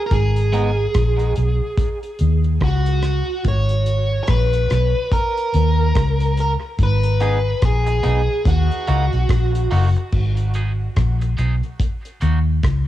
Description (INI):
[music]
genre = dub reggae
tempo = 72 BPM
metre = 4/4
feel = swing 60% on 16ths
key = G# minor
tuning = A4 = 439 Hz
[part]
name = biting lead guitar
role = melody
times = 0.1-9.7 s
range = F#4 to C#5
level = -23 LUFS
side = equal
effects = overdrive, cassette tape, dub echo
[part]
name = vintage muted fingered electric bass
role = bass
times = 0.1-12.9 s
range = F#1 to D#2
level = -17 LUFS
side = equal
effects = none
[part]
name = damped 70s drum kit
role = drums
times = 0.1-12.9 s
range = crash cymbal, hi-hat, kick drum, rim click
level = -22 LUFS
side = equal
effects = cassette tape
[part]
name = electric guitar at the edge of break-up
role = accompaniment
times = 0.5-0.7, 7.2-12.4 s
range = G#3 to G#4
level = -29 LUFS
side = right 3 dB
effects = high-pass filter, cassette tape, dub echo
[sound]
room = studio reverb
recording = home recording on cassette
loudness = -16 LUFS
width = side -13 dB against mid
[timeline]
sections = 0.0-10.1 A section; 10.1-12.9 B section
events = filter sweep on clean electric guitar 6.8-12.9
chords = 0.1 G#m; 1.8 D#m; 3.5 G#m; 5.1 D#5; 6.8 G#m; 8.5 D#m; 10.1 G#m; 11.8 D#m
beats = | 0.11 0.95 1.78 2.62 | 3.45 4.29 5.12 5.96 | 6.79 7.62 8.46 9.29 | 10.13 10.97 11.80 12.64